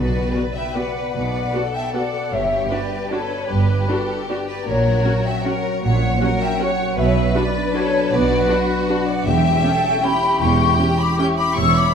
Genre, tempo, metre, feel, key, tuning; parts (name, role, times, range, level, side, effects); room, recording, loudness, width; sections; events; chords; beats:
classical, orchestral ballroom waltz; 155 BPM; 3/4; uneven beats, rubato; B minor; A4 = 440 Hz
clear symphonic violin section; melody; 0.0-11.9 s; F#4 to D5; -28 LUFS; left 4 dB
large flute ensemble; second line; 0.0-11.9 s; B4 to E6; -22 LUFS; left 2 dB
rich symphonic violin section; second line; 0.0-11.9 s; F#4 to C#6; -27 LUFS; equal
concert harp; arpeggios; 0.0-11.9 s; G2 to E5; -26 LUFS; left 4 dB
warm symphonic cello section; bass; 0.0-11.9 s; E2 to B2; -24 LUFS; right 3 dB
warm symphonic double bass section; bass; 0.0-11.9 s; E1 to B1; -23 LUFS; right 3 dB
timpani; percussion; 0.0-0.5 s; B2; -31 LUFS; left 2 dB
rich symphonic viola section; accompaniment; 0.3-11.3 s; B3 to G4; -27 LUFS; right 1 dB
wet recital hall reverb, RT60 1.7 s; -17 LUFS; side -7 dB against mid
0.0-11.9 A section
0.0 Bm; 2.3 Gmaj7; 4.7 F#/A#; 7.0 Bm; 9.3 C#dim/E
0.35 0.76 | 1.15 1.54 1.95 | 2.33 2.71 3.12 | 3.50 3.89 4.30 | 4.68 5.06 5.46 | 5.84 6.22 6.61 | 6.97 7.35 7.74 | 8.12 8.49 8.88 | 9.26 9.63 10.04 | 10.41 10.79 11.19 | 11.57